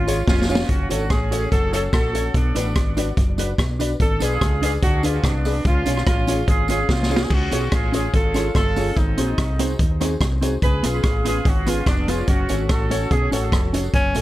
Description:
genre	ska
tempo	145 BPM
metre	4/4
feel	straight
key	F# harmonic minor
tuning	A4 = 444 Hz
part	warm horn section	melody	0.0-13.7 s	B3 to B4	-25 LUFS	equal	tape echo
part	fingered electric bass	bass	0.0-14.2 s	E#1 to D#2	-24 LUFS	equal	none
part	mellow electric guitar	accompaniment	0.1-14.2 s	B3 to C#5	-26 LUFS	right 3 dB	analog chorus
part	dark upright piano	stabs	0.1-14.2 s	C#4 to D5	-30 LUFS	left 4 dB	tape echo
part	vintage drum kit	drums	0.1-14.2 s	crash cymbal, hi-hat, kick drum, rim click, snare drum	-20 LUFS	equal	none
part	tambourine	percussion	0.1-14.2 s	none	-40 LUFS	right 2 dB	none
part	breathy tenor saxophone	melody	13.9-14.2 s	C#4	-20 LUFS	left 1 dB	none
room	little or no reverb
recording	none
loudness	-18 LUFS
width	side -15 dB against mid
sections	0.7-13.9 A section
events	drum fill 0.3-0.7, 6.9-7.3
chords	0.0 C#; 0.7 F#m; 2.3 Bm; 4.0 G#dim; 5.7 C#; 9.0 G#7; 10.6 C#7; 12.3 F#m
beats	0.28 | 0.69 1.10 1.52 1.93 | 2.34 2.76 3.17 3.58 | 4.00 4.41 4.82 5.24 | 5.65 6.06 6.48 6.89 | 7.31 7.72 8.13 8.55 | 8.96 9.38 9.79 10.21 | 10.62 11.04 11.45 11.87 | 12.28 12.69 13.11 13.52 | 13.94

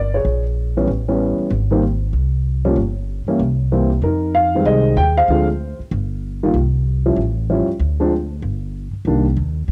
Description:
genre	jazz piano trio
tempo	191 BPM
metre	4/4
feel	swing 62% on 8ths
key	C minor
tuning	A4 = 440 Hz
part	dark upright piano	melody	0.0-9.2 s	D3 to G5	-20 LUFS	equal	cassette tape
part	upright bass	bass	0.0-9.7 s	G1 to F2	-22 LUFS	equal	none
room	moderate booth ambience, RT60 0.2 s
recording	home recording on cassette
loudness	-18 LUFS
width	mono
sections	0.0-9.1 A section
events	none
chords	0.3 Bbm7; 0.9 A9; 1.5 Ab; 2.8 N.C.; 3.4 C7; 4.0 Fm9; 5.3 Dm7b5; 5.9 N.C.; 6.5 C5; 7.2 A7b13; 7.8 N.C.; 9.1 Cm7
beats	| 0.25 0.56 0.88 1.19 | 1.51 1.82 2.14 2.45 | 2.77 3.08 3.39 3.71 | 4.02 4.34 4.65 4.97 | 5.28 5.60 5.91 6.23 | 6.54 6.86 7.17 7.49 | 7.80 8.12 8.43 8.74 | 9.06 9.38 9.69

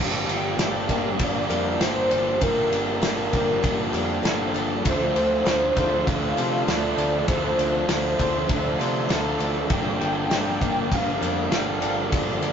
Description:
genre	rock, shoegaze and dream pop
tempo	99 BPM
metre	4/4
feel	straight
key	G minor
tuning	A4 = 439 Hz
part	warm velvety synth lead	melody	0.0-12.5 s	G4 to G5	-26 LUFS	equal	chorus
part	picked twelve-string acoustic guitar	arpeggios	0.0-12.5 s	F3 to A4	-31 LUFS	left 4 dB	none
part	crunchy overdriven guitar	riff	0.0-12.5 s	G2 to D4	-27 LUFS	right 4 dB	none
part	distorted electric guitar	riff	0.0-12.5 s	G2 to D4	-34 LUFS	left 1 dB	none
part	overdriven semi-hollow guitar	riff	0.0-12.5 s	G2 to G4	-31 LUFS	left 2 dB	none
part	growling picked electric bass	bass	0.0-12.5 s	G1 to C3	-32 LUFS	equal	overdrive
part	loose indie drum kit	drums	0.3-12.5 s	kick drum, ride cymbal, snare drum	-27 LUFS	equal	none
room	moderate studio reverb, RT60 0.6 s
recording	rough rehearsal-room recording, tube saturation, nothing above 7.6 kHz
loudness	-21 LUFS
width	side -7 dB against mid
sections	0.0-12.5 A section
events	none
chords	0.0 Gm9; 4.9 Dm7; 9.7 Gm9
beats	0.58 1.20 1.80 | 2.42 3.03 3.64 4.25 | 4.85 5.46 6.07 6.68 | 7.28 7.89 8.50 9.10 | 9.71 10.31 10.92 11.52 | 12.13

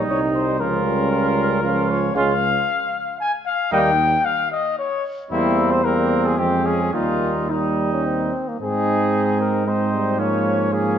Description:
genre	classical, brass quintet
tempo	114 BPM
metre	3/4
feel	rubato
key	Ab major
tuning	A4 = 440 Hz
part	mellow cornet	melody	0.0-11.0 s	Eb4 to Ab5	-22 LUFS	left 5 dB	none
part	warm trumpet	second line	0.0-11.0 s	C4 to F4	-25 LUFS	right 6 dB	none
part	clear French horn	accompaniment	0.0-11.0 s	G3 to Eb4	-26 LUFS	left 2 dB	none
part	clear trombone	accompaniment	0.0-11.0 s	F3 to Ab3	-27 LUFS	right 4 dB	none
part	warm tuba	bass	0.0-11.0 s	C2 to Ab2	-24 LUFS	right 4 dB	none
room	moderate concert hall reverb, RT60 1.9 s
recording	nothing above 7.6 kHz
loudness	-18 LUFS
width	side -9 dB against mid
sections	0.0-8.6 A section; 8.6-11.0 B section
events	none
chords	0.0 N.C.; 0.6 Bbm/Db; 2.2 Db; 3.7 Eb; 5.3 C7/E; 6.4 Fm; 6.9 Eb; 8.6 Ab; 10.2 Bbm7/Ab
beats	0.08 | 0.59 1.11 1.63 | 2.15 2.67 3.20 | 3.72 4.25 4.78 | 5.31 5.84 6.38 | 6.93 7.50 8.05 | 8.61 9.14 9.67 | 10.20 10.73

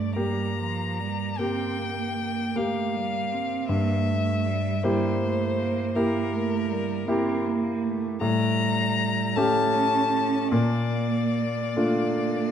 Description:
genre	classical, slow romantic movement for piano trio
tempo	44-55 BPM (dotted quarters)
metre	12/8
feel	rubato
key	unclear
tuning	A4 = 441 Hz
part	rich violin	melody	0.0-12.5 s	Bb4 to Bb5	-29 LUFS	left 4 dB	none
part	clear cello	second line	0.0-12.5 s	F3 to C#4	-29 LUFS	right 7 dB	none
part	warm concert grand piano	accompaniment	0.0-12.5 s	G2 to G4	-26 LUFS	left 1 dB	none
room	moderate scoring stage reverb, RT60 1.6 s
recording	dark, warm production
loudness	-23 LUFS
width	side -8 dB against mid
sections	0.0-12.5 A section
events	none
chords	0.0 Gm; 3.7 Edim/G; 8.2 A7b9; 10.5 Bbmaj7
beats	0.16 1.38 2.56 | 3.69 4.84 5.96 7.07 | 8.22 9.36 10.51 11.75

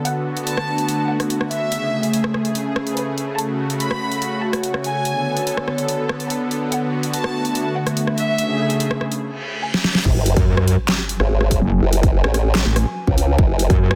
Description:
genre	heavy wobble dubstep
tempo	144 BPM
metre	4/4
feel	half-time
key	F# minor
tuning	A4 = 440 Hz
part	supersaw pad	sustained chords	0.0-9.2 s	C#3 to A4	-26 LUFS	equal	vintage 12-bit sampler grit, sidechain pumping
part	warbly tape-like pad	texture	0.0-14.0 s	A3 to B5	-28 LUFS	equal	chorus, built-in reverb, sidechain pumping
part	warm chamber violin section	melody	0.1-10.0 s	B4 to B5	-28 LUFS	equal	tape echo
part	dubstep drum kit	drums	0.1-14.0 s	crash cymbal, handclaps, hi-hat, rim click, snare drum	-26 LUFS	equal	overdrive, soft clipping on snare
part	reverse cymbal and sub drop	sound effects	9.3-11.7 s	none	-28 LUFS	equal	none
part	formant-sweep wobble bass	bass	10.1-13.7 s	F#1 to C#2	-20 LUFS	equal	chorus, overdrive
part	electronic kick drum	drums	10.1-13.8 s	none	-20 LUFS	equal	none
part	metallic wobble bass	bass	10.4-14.0 s	F#1 to F#2	-19 LUFS	equal	chorus, overdrive
room	moderate lush hall reverb, RT60 2.4 s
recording	dense, heavily limited modern master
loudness	-20 LUFS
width	mono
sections	0.0-10.1 A section; 10.1-14.0 B section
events	reverse cymbal 9.3-10.1; drum fill 9.7-10.1; drop 10.1-14.0; impact 10.1-11.7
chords	0.1 D6; 1.7 Amaj7/C#; 3.4 F#m; 5.1 Bm7; 6.7 D6; 8.4 Amaj7/C#; 9.2 N.C.; 10.1 F#5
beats	| 0.05 0.47 0.89 1.30 | 1.72 2.13 2.55 2.97 | 3.38 3.80 4.22 4.63 | 5.05 5.47 5.88 6.30 | 6.72 7.13 7.55 7.97 | 8.38 8.80 9.22 9.63 | 10.05 10.47 10.88 11.30 | 11.72 12.13 12.55 12.97 | 13.38 13.80

